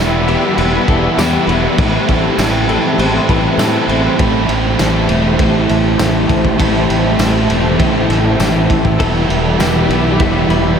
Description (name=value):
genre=rock, shoegaze and dream pop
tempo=100 BPM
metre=4/4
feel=straight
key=A minor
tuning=A4 = 438 Hz
part: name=dark analog pad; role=sustained chords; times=0.0-10.8 s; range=C4 to B5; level=-21 LUFS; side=equal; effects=chorus
part: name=biting overdriven guitar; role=riff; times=0.0-10.8 s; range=E2 to E4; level=-16 LUFS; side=right 7 dB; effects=reverse reverb
part: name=overdriven semi-hollow guitar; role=riff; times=0.0-10.8 s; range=A2 to E4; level=-18 LUFS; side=left 8 dB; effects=lush chorus
part: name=modern bright fingered electric bass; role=bass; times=0.0-10.8 s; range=E1 to A2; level=-18 LUFS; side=equal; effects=none
part: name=direct-recorded clean electric guitar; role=arpeggios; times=0.3-4.2, 9.0-10.8 s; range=G4 to C5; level=-25 LUFS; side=left 6 dB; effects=ensemble chorus, diffuse ambient delay
part: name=loose indie drum kit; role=drums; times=0.3-10.6 s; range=crash cymbal, kick drum, ride cymbal, snare drum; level=-19 LUFS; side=equal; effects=none
part: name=tambourine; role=percussion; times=1.2-9.7 s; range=none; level=-33 LUFS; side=right 8 dB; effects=none
room=wet huge ambient reverb, RT60 8.1 s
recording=dreamy mix soaked in reverb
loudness=-11 LUFS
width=side -7 dB against mid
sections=0.0-4.2 A section; 4.2-10.8 B section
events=none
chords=0.0 Em7; 1.8 Am7; 9.0 Em7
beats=0.58 1.18 | 1.78 2.38 2.98 3.58 | 4.19 4.79 5.39 5.99 | 6.59 7.20 7.80 8.40 | 9.00 9.60 10.20